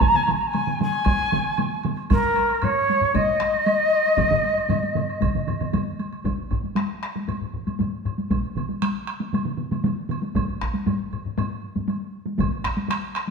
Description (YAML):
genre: japanese traditional, taiko drum ensemble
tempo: 116 BPM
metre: 4/4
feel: straight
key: unclear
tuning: A4 = 440 Hz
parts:
  - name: shakuhachi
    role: melody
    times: 0.0-5.7 s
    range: Bb4 to Bb5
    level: -21 LUFS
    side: equal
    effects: none
  - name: solo taiko drums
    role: percussion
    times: 0.0-13.3 s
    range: none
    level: -28 LUFS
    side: right 3 dB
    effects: none
  - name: taiko ensemble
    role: percussion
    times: 0.0-13.3 s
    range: none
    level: -27 LUFS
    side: left 1 dB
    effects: none
  - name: taiko ensemble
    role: percussion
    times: 0.0-12.8 s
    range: none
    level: -26 LUFS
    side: right 1 dB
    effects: none
  - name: woodblock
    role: percussion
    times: 0.0-13.3 s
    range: none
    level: -36 LUFS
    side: right 8 dB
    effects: none
  - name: taiko ensemble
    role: percussion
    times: 2.1-13.3 s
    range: none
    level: -30 LUFS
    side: left 3 dB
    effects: none
room: wet stone room reverb, RT60 1.3 s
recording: band playing live in one room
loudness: -21 LUFS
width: side -5 dB against mid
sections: 0.0-6.3 A section; 6.3-13.3 B section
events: speeding up 0.0-13.3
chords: none